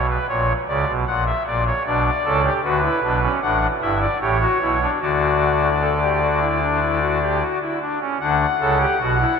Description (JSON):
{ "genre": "classical, baroque-style 3-part fugue for pipe organ", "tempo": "76 BPM", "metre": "4/4", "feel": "straight", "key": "D major", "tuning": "A4 = 441 Hz", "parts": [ { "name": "pipe organ, soft reed", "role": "solo", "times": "0.0-9.4 s", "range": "G1 to F#5", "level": "-17 LUFS", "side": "left 1 dB", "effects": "none" } ], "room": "wet huge ambient reverb, RT60 8.5 s", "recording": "in a vast, echoing space", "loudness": "-17 LUFS", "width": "side -6 dB against mid", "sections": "0.0-8.2 A section; 8.2-9.4 B section", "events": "none", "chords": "0.3 F#/A# (rootless); 1.9 Bm; 3.4 D/A; 4.2 A7; 5.0 D", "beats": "0.28 1.07 | 1.85 2.64 3.42 4.21 | 5.01 5.81 6.62 7.42 | 8.21 9.01" }